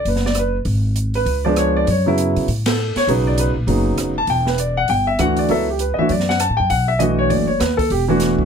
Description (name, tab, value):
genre	jazz piano trio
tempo	199 BPM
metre	4/4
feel	swing 61% on 8ths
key	B minor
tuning	A4 = 440 Hz
part	clear baby grand piano	melody	0.0-8.4 s	C#3 to A5	-18 LUFS	equal	none
part	upright bass	bass	0.1-8.4 s	E1 to C#3	-20 LUFS	equal	none
part	open jazz drum kit	drums	0.1-8.4 s	hi-hat, kick drum, ride cymbal, rim click, snare drum	-26 LUFS	right 3 dB	none
room	little or no reverb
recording	close, detailed microphones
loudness	-16 LUFS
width	side -7 dB against mid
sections	0.0-8.4 A section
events	band accent 2.6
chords	0.0 B5; 0.7 N.C.; 1.3 C#7b9; 1.9 F#m7; 3.1 B; 4.3 Em9; 5.5 A69/C#; 6.1 F#m; 6.7 Bm7; 7.9 E9sus4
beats	0.06 0.36 | 0.66 0.97 1.27 1.57 | 1.87 2.17 2.48 2.78 | 3.08 3.38 3.68 3.98 | 4.29 4.59 4.89 5.19 | 5.49 5.79 6.09 6.40 | 6.70 7.00 7.30 7.60 | 7.90 8.20